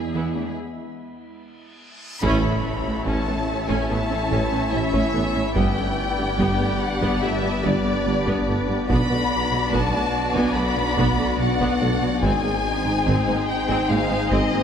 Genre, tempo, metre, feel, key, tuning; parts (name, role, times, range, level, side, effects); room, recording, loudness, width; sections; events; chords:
cinematic, hybrid orchestral and electronic film score; 72 BPM; 4/4; straight; A4 = 436 Hz
warm symphonic violin section; melody; 0.0-14.6 s; G#4 to B5; -27 LUFS; left 4 dB
organ-like drone; sustained chords; 0.0-14.6 s; G#3 to E5; -30 LUFS; left 1 dB; ensemble chorus, built-in reverb
dark symphonic cello section; bass; 0.0-14.6 s; E2 to B2; -29 LUFS; right 2 dB
reverse cymbal and impact; sound effects; 1.7-5.6 s; -36 LUFS; equal
warm symphonic viola section; accompaniment; 0.1-14.6 s; F#3 to G4; -28 LUFS; right 2 dB
tight sequenced synth; arpeggios; 0.1-14.6 s; E3 to B4; -32 LUFS; right 1 dB
warm studio violin section; second line; 2.2-14.6 s; F#4 to D5; -30 LUFS; left 2 dB
mellow French horn section; sustained chords; 2.2-14.6 s; B3 to E4; -29 LUFS; left 4 dB
mellow tuba; bass; 2.2-14.4 s; G1 to B1; -30 LUFS; right 3 dB
swelling detuned saw bass; bass; 2.2-14.6 s; G1 to B1; -30 LUFS; equal
warm symphonic double bass section; bass; 2.2-14.4 s; G1 to B1; -30 LUFS; right 2 dB
taiko ensemble; drums; 2.2-14.6 s; -30 LUFS; equal
wet scoring stage reverb, RT60 1.6 s; -19 LUFS; side -8 dB against mid
0.0-2.2 A section; 2.2-14.6 B section
break 0.6-2.2; reverse cymbal 1.7-2.2; band accent 2.2-3.1; impact 2.2-5.6
0.0 E; 2.2 A; 5.6 G; 8.9 Bm; 12.2 G#